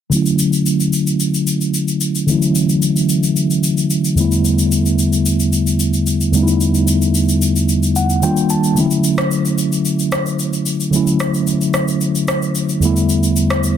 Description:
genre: amapiano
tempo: 111 BPM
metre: 4/4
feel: straight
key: D major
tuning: A4 = 440 Hz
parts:
  - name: mellow tine electric piano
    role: accompaniment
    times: 0.1-13.8 s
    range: E2 to A5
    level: -14 LUFS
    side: equal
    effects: slow stereo tremolo, low-pass filter
  - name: electronic shaker and rim click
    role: drums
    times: 0.1-13.8 s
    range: none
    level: -22 LUFS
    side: left 2 dB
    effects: none
room: moderate plate reverb, RT60 1.6 s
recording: dense, heavily limited modern master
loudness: -14 LUFS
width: side -9 dB against mid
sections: 0.1-13.8 A section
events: filter sweep on tine electric piano 0.1-13.8; tine electric piano fill 7.7-8.8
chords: 0.1 Dmaj9; 4.2 A9sus4/E; 8.2 Ebmaj9; 8.8 Dmaj9; 12.8 A9sus4/E

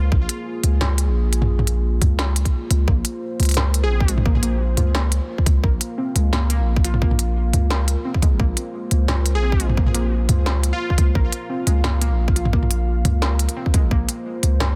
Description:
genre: half-time drum and bass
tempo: 174 BPM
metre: 4/4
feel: swing 54% on 16ths, half-time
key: Bb minor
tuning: A4 = 440 Hz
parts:
  - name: plucky unison lead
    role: melody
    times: 0.0, 3.8-4.1, 9.4-11.1 s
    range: F4 to Ab4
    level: -32 LUFS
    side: equal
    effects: digital delay
  - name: dark analog pad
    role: sustained chords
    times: 0.0-14.8 s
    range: Bb3 to F5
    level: -32 LUFS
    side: equal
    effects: chorus, vintage 12-bit sampler grit, sidechain pumping
  - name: long sustained 808-style bass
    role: bass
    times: 0.0-14.8 s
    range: Ab1 to Db2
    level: -21 LUFS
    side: equal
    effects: none
  - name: electronic kick drum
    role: drums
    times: 0.1-14.0 s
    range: none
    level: -21 LUFS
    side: equal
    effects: none
  - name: industrial drum kit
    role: drums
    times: 0.3-14.7 s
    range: hi-hat, snare drum, toms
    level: -26 LUFS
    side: equal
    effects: none
  - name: warbly dusty pluck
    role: arpeggios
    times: 2.9-14.8 s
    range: Ab3 to Bb4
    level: -32 LUFS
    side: equal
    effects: chorus, digital delay
room: little or no reverb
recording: dense, heavily limited modern master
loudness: -20 LUFS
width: mono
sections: 0.0-2.9 A section; 2.9-14.8 A section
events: drop 0.0-2.9, 2.9-14.8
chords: 0.0 Bbm

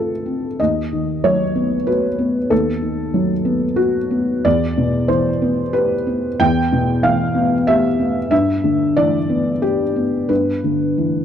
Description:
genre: neoclassical minimalist piano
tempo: 93 BPM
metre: 3/4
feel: uneven beats, rubato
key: unclear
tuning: A4 = 441 Hz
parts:
  - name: felt-muted upright piano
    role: solo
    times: 0.0-11.2 s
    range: D2 to G5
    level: -16 LUFS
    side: equal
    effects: none
room: light reverb, small room ambience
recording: dry, close 1970s-style studio recording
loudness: -15 LUFS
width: side -9 dB against mid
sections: 0.0-11.2 A section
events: none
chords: 0.0 Dm7; 0.6 B7/D#; 4.5 Em; 8.3 G6

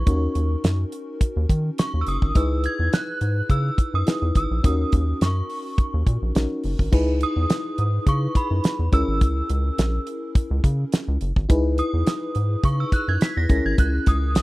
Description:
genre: early-eighties boogie funk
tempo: 105 BPM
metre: 4/4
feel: straight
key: C# dorian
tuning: A4 = 440 Hz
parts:
  - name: synth chime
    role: melody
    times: 0.0-14.4 s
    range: B5 to B6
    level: -29 LUFS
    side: right 2 dB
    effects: ensemble chorus
  - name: FM electric piano with soft pad layer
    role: accompaniment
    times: 0.0-14.4 s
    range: C#4 to B4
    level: -28 LUFS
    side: left 2 dB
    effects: chorus, tremolo
  - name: rubbery square bass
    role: bass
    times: 0.0-14.4 s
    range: F#1 to D#3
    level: -22 LUFS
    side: equal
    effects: none
  - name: damped 70s drum kit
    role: drums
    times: 0.1-14.4 s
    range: crash cymbal, hi-hat, kick drum, snare drum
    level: -20 LUFS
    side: equal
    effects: none
room: little or no reverb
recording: dry, close 1970s-style studio recording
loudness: -20 LUFS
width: side -20 dB against mid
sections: 0.0-6.9 A section; 6.9-14.4 B section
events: none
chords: 0.1 D#m7; 2.4 C#m7; 4.6 D#m7; 6.9 C#m7; 8.9 F#9 (rootless); 11.5 C#m7; 13.5 F#13/G#

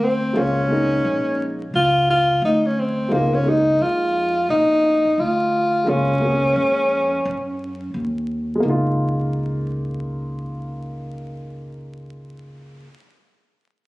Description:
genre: hip hop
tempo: 87 BPM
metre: 4/4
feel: swing 61% on 16ths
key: Db major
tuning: A4 = 440 Hz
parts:
  - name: breathy tenor saxophone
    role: melody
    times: 0.0-7.9 s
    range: Bb3 to F4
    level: -18 LUFS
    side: equal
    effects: none
  - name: upright bass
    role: bass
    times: 0.0-12.8 s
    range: Bb1 to Gb2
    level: -25 LUFS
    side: equal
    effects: none
  - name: dark concert grand piano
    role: accompaniment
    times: 0.3-12.9 s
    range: Ab3 to Ab4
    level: -24 LUFS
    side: equal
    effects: none
room: light reverb, small room ambience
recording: recorded on a phone in the room, club ambience, vinyl crackle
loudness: -18 LUFS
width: side -18 dB against mid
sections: 0.0-8.6 A section; 8.6-11.4 B section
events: none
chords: 0.3 Bbm11; 3.1 Db69; 5.9 Gbmaj9/Db; 8.6 Db69

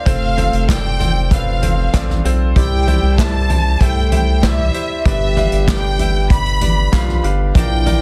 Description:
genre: piano-driven pop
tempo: 96 BPM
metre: 4/4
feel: straight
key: unclear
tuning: A4 = 440 Hz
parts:
  - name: rich studio violin section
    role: melody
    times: 0.0-8.0 s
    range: E5 to B5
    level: -24 LUFS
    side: equal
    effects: none
  - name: clear concert grand piano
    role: accompaniment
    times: 0.0-8.0 s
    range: G2 to F5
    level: -26 LUFS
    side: equal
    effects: plate reverb
  - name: dark French horn section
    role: second line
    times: 0.1-8.0 s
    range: E3 to A4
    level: -28 LUFS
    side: equal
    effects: plate reverb
  - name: round analog bass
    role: bass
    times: 0.1-8.0 s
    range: F1 to C2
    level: -19 LUFS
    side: equal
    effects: none
  - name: unplugged drum kit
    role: drums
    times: 0.1-8.0 s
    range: handclaps, hi-hat, kick drum, snare drum, toms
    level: -20 LUFS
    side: equal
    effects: none
room: light reverb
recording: dense, heavily limited modern master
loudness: -16 LUFS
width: mono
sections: 0.0-8.0 A section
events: none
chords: 0.1 F; 2.6 Cadd9; 5.1 G

